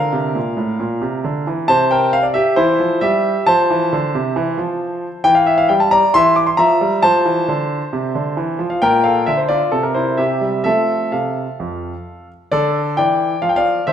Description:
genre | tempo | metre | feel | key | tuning
classical-period piano sonatina | 134 BPM | 4/4 | straight | F major | A4 = 440 Hz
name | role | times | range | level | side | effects
clear concert grand piano | solo | 0.0-13.9 s | F2 to D6 | -14 LUFS | equal | none
room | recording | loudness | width
moderate recital hall reverb, RT60 1.6 s | none | -14 LUFS | side -9 dB against mid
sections
0.0-12.5 A section; 12.5-13.9 B section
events
none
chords
0.0 Bb; 1.7 C7; 3.5 F; 5.2 Edim; 7.0 F; 8.8 Bb; 9.7 C7; 10.2 C; 10.7 F; 12.5 Dm

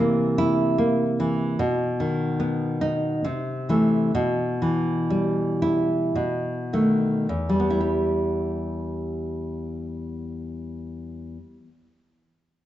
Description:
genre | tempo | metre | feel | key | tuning
romantic piece for solo classical guitar | 50-76 BPM | 3/4 | rubato | E minor | A4 = 439 Hz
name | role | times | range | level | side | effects
nylon-string guitar | solo | 0.0-11.9 s | E2 to G4 | -22 LUFS | equal | none
room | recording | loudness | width
wet recital hall reverb, RT60 1.4 s | dark, warm production, nothing above 7.9 kHz | -22 LUFS | side -13 dB against mid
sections
0.0-7.3 A section; 7.3-10.8 B section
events
slowing down 0.4-7.3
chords
0.0 C7; 1.6 B; 3.2 Am/C; 4.1 Em/B; 6.2 B7; 7.3 Em

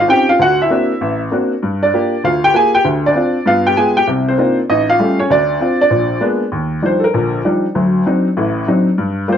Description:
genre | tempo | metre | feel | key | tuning
jazz | 196 BPM | 4/4 | swing 63% on 8ths | unclear | A4 = 440 Hz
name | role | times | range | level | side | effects
warm upright piano | solo | 0.0-9.4 s | A1 to Ab5 | -12 LUFS | equal | none
room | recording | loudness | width
moderate studio ambience, RT60 0.5 s | nothing above 7.8 kHz | -12 LUFS | side -8 dB against mid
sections
0.0-6.5 A section; 6.5-9.4 B section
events
upright piano solo 6.5-9.4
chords
0.4 D7b13; 1.6 Gm7; 2.8 Dm7; 3.5 G7b9; 4.1 Cm11; 4.7 A7b13; 5.3 Dm7; 5.9 Bb7b9; 6.5 Ebmaj9; 7.8 D7b9

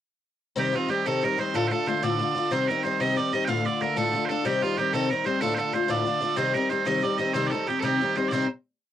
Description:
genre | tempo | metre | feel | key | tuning
celtic folk, Celtic jig | 124 BPM (dotted quarters) | 6/8 | straight | C dorian | A4 = 444 Hz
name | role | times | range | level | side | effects
loud bright bagpipes | melody | 0.6-8.5 s | F4 to G5 | -26 LUFS | right 7 dB | cassette tape
picked twelve-string acoustic guitar | accompaniment | 0.6-8.5 s | D2 to F4 | -25 LUFS | left 4 dB | cassette tape
room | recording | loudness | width
moderate booth ambience, RT60 0.2 s | home recording on cassette | -23 LUFS | side -10 dB against mid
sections
0.6-8.3 A section; 8.3-8.9 final chord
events
none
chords
0.6 Cm; 1.5 Dm; 2.5 Cm; 3.5 Dm; 4.4 Cm; 5.4 Dm; 6.4 Cm

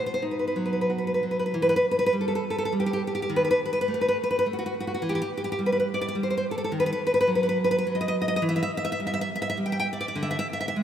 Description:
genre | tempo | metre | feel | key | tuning
romantic piece for solo classical guitar | 104 BPM | 3/4 | rubato | E minor | A4 = 441 Hz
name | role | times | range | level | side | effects
nylon-string guitar | solo | 0.0-10.8 s | B2 to G5 | -23 LUFS | equal | none
room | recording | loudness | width
wet cathedral reverb, RT60 5.7 s | recorded in a church or concert hall | -23 LUFS | side -9 dB against mid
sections
0.0-1.5 A section; 1.5-10.8 B section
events
none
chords
0.0 B; 1.5 Em (rootless); 3.3 D#dim (rootless); 5.0 N.C.; 6.7 B/D#; 8.4 Em; 10.2 E7(no3)/D

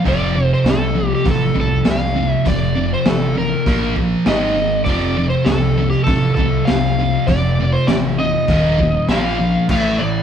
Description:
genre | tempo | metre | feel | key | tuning
garage rock duo or trio | 100 BPM | 4/4 | straight | unclear | A4 = 440 Hz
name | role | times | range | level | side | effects
overdriven slide guitar | melody | 0.0-10.2 s | G4 to F5 | -21 LUFS | right 1 dB | none
thick fuzz guitar | riff | 0.0-10.2 s | Eb2 to Bb3 | -17 LUFS | equal | distortion
growling picked electric bass | bass | 0.0-10.2 s | Eb1 to C2 | -23 LUFS | left 1 dB | overdrive
crunchy breakbeat drum kit | drums | 0.1-9.8 s | crash cymbal, hi-hat, kick drum, snare drum | -21 LUFS | equal | none
room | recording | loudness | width
light reverb | band playing live in one room | -14 LUFS | side -8 dB against mid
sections
0.0-9.7 A section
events
none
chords
0.1 F; 3.7 Bb5; 4.3 G#5; 4.9 F; 8.5 Eb5; 9.1 Bb5; 9.7 A5

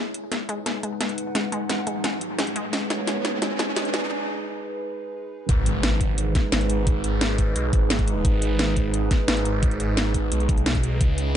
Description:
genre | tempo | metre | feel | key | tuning
dark technical drum and bass | 174 BPM | 4/4 | straight | G# minor | A4 = 440 Hz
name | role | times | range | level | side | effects
dark analog pad | sustained chords | 0.0-11.4 s | G#3 to E5 | -30 LUFS | right 2 dB | chorus, sidechain pumping
wide unison pluck | arpeggios | 0.0-3.9 s | G#3 | -30 LUFS | left 3 dB | sidechain pumping, ping-pong delay
riser and impact | sound effects | 0.0-6.9 s | none | -30 LUFS | equal | none
warbly tape-like pad | texture | 0.0-4.1 s | D#4 to G#5 | -33 LUFS | right 2 dB | chorus, built-in reverb, tremolo, sidechain pumping
drum and bass drum kit | drums | 0.1-11.2 s | hi-hat, snare drum | -26 LUFS | equal | none
phased detuned saw bass | bass | 5.5-11.4 s | G#1 to C#2 | -24 LUFS | equal | phaser, overdrive
electronic kick drum | drums | 5.5-11.1 s | none | -22 LUFS | equal | none
room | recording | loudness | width
light reverb | high-pass filter, nothing above 10.6 kHz | -21 LUFS | side -10 dB against mid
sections
0.0-5.5 A section; 5.5-11.4 B section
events
build-up 0.0-5.5; drum fill 0.0-4.1; riser 0.0-4.1; filter sweep on analog synth pad 0.0-5.5; filter sweep 0.0-5.5; break 4.1-5.5; drop 5.5-11.4; impact 5.5-6.9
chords
0.0 G#m7

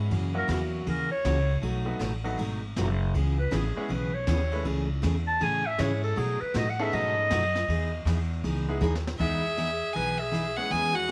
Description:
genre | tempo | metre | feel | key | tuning
country, western swing | 158 BPM | 4/4 | swing 64% on 8ths | E major | A4 = 439 Hz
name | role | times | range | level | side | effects
bright upright piano | accompaniment | 0.0-11.1 s | E3 to B4 | -37 LUFS | equal | none
upright bass | bass | 0.0-11.1 s | F#1 to B2 | -32 LUFS | equal | none
picked steel-string acoustic guitar | accompaniment | 0.1-11.1 s | B2 to G#4 | -34 LUFS | equal | none
jazz brush drum kit | drums | 0.1-11.1 s | crash cymbal, hi-hat, kick drum, ride cymbal, snare drum | -42 LUFS | equal | none
warm clarinet | second line | 0.4-11.1 s | F#4 to A5 | -32 LUFS | equal | none
clear fiddle | melody | 9.2-11.1 s | E5 to G#5 | -30 LUFS | equal | none
room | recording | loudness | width
light reverb, studio reverb | none | -28 LUFS | mono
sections
0.0-9.2 A section; 9.2-11.1 B section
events
clarinet solo 0.0-9.2; drum fill 8.8-9.2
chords
0.1 F#7; 1.6 B7; 3.1 C#m7; 4.7 Amaj7/C#; 6.2 B13; 7.7 Emaj7

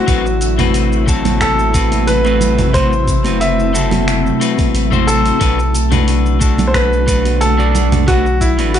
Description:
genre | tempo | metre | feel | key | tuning
sunset chillout | 90 BPM | 4/4 | swing 53% on 16ths | A dorian | A4 = 440 Hz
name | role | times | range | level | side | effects
bright concert grand piano | melody | 0.0-8.8 s | E4 to E5 | -18 LUFS | left 1 dB | ping-pong delay
electric guitar at the edge of break-up | accompaniment | 0.0-8.8 s | A3 to D5 | -20 LUFS | moving between left 10 dB and right 7 dB | auto-pan, low-pass filter, ping-pong delay
shimmering ambient pad | sustained chords | 0.0-8.8 s | C3 to F#4 | -19 LUFS | equal | chorus, built-in reverb
round analog bass | bass | 0.1-8.8 s | F#1 to B1 | -16 LUFS | equal | none
dusty soul sampler-style drum kit | drums | 0.1-8.8 s | cabasa, congas, finger snaps, hi-hat | -22 LUFS | right 3 dB | none
electronic kick drum | drums | 0.1-8.6 s | none | -17 LUFS | equal | none
congas | percussion | 0.6-8.7 s | none | -23 LUFS | right 6 dB | none
room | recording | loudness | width
light reverb, digital ambience | nothing above 10.4 kHz | -11 LUFS | side -9 dB against mid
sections
0.0-8.8 A section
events
none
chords
0.0 Am69; 5.4 Bm7

